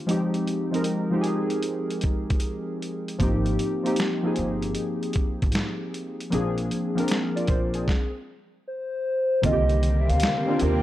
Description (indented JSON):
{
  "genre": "lo-fi hip hop",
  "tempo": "77 BPM",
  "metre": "4/4",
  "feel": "swing 66% on 16ths",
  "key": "C minor",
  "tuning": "A4 = 440 Hz",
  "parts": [
    { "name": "warbly lo-fi synth keys", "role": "accompaniment", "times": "0.0-10.8 s", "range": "D3 to D5", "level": "-25 LUFS", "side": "equal", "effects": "chorus, cassette tape" },
    { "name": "boom bap sampler-style drum kit", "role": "drums", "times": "0.1-10.8 s", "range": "hi-hat, kick drum, snare drum", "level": "-27 LUFS", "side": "equal", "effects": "none" },
    { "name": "upright bass", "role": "bass", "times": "3.2-10.8 s", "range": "G1 to Eb2", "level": "-26 LUFS", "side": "equal", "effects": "transformer saturation" },
    { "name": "hollow clarinet-like synth lead", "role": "melody", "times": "8.7-10.8 s", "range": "C5 to G5", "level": "-25 LUFS", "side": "equal", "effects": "chorus, phaser" },
    { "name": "warm studio string section", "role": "sustained chords", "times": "9.4-10.8 s", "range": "C3 to C4", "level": "-30 LUFS", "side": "left 1 dB", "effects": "none" }
  ],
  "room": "digital ambience",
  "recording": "dry, gritty hardware recording, transformer saturation",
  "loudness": "-23 LUFS",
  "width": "side -14 dB against mid",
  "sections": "0.0-9.4 A section; 9.4-10.8 B section",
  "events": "stop 7.9-9.4",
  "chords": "0.1 Fm7; 3.2 Abmaj13; 6.3 Bb9; 9.4 Cm9"
}